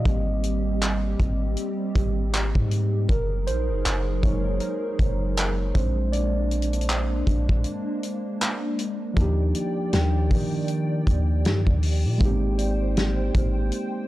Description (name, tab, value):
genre	contemporary R&B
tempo	79 BPM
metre	4/4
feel	swing 58% on 16ths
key	Eb major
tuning	A4 = 440 Hz
part	muted felt-like synth keys	accompaniment	0.0-14.1 s	F3 to Eb5	-29 LUFS	right 1 dB	chorus
part	hollow soft pad	sustained chords	0.0-14.1 s	Eb3 to G5	-32 LUFS	equal	ensemble chorus
part	long sustained 808-style bass	bass	0.0-13.7 s	Gb1 to Eb3	-24 LUFS	equal	tube saturation
part	warm soul drum kit	drums	0.1-13.9 s	handclaps, hi-hat, kick drum, snare drum	-25 LUFS	equal	none
part	celesta	texture	9.9-14.1 s	C5 to G5	-38 LUFS	equal	analog delay
room	little or no reverb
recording	dry, gritty hardware recording, transformer saturation, cassette tape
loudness	-22 LUFS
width	side -16 dB against mid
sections	0.0-9.2 A section; 9.2-14.1 B section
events	synth keys solo 0.0-9.2; break 7.6-9.2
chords	0.1 Abmaj7; 3.1 Gb69; 5.8 Bb7; 9.2 Ebmaj7; 12.2 Abmaj7